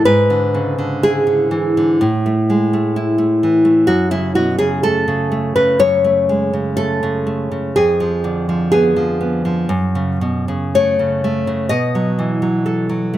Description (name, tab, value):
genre	romantic piece for solo classical guitar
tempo	62 BPM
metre	4/4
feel	rubato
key	unclear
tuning	A4 = 439 Hz
part	nylon-string guitar	solo	0.0-13.2 s	F2 to D#5	-14 LUFS	equal	none
room	light reverb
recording	close, detailed microphones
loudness	-14 LUFS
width	side -13 dB against mid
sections	0.0-13.2 A section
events	none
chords	0.0 E7/G#; 2.0 A5; 3.9 F#m; 7.8 Fdim7; 9.7 F#m; 11.7 B7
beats	| 0.04 1.01 2.01 2.96 | 3.89 4.85 5.81 6.78 | 7.76 8.72 9.69 10.73 | 11.71 12.67